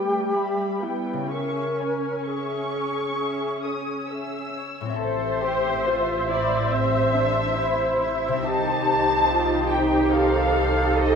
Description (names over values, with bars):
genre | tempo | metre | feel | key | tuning
cinematic, emotional film score for orchestra | 60-73 BPM | 4/4 | rubato | unclear | A4 = 442 Hz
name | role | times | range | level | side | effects
muted symphonic violin section | melody | 0.0-11.2 s | C5 to E6 | -32 LUFS | equal | none
wooden-headed alto flute | melody | 0.0-4.6 s | E4 to Bb4 | -27 LUFS | left 1 dB | none
muted symphonic violin section | second line | 0.0-11.2 s | G4 to A5 | -27 LUFS | left 2 dB | none
muted symphonic viola section | accompaniment | 0.0-11.2 s | G3 to E5 | -27 LUFS | right 1 dB | none
concert harp | arpeggios | 0.0-11.2 s | A2 to E5 | -34 LUFS | left 6 dB | none
muted symphonic cello section | bass | 0.0-11.2 s | G3 to A4 | -30 LUFS | right 3 dB | none
dark French horn section | sustained chords | 5.0-11.2 s | C3 to C5 | -30 LUFS | left 3 dB | none
muted symphonic double bass section | bass | 5.0-11.2 s | A1 to C2 | -29 LUFS | right 2 dB | none
room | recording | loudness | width
moderate scoring stage reverb, RT60 2.0 s | minimal, uncompressed stereo recording | -21 LUFS | side -6 dB against mid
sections
0.0-5.0 A section; 5.0-11.2 A section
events
none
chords
0.0 Em; 1.3 C#m; 5.0 Am; 8.5 Cm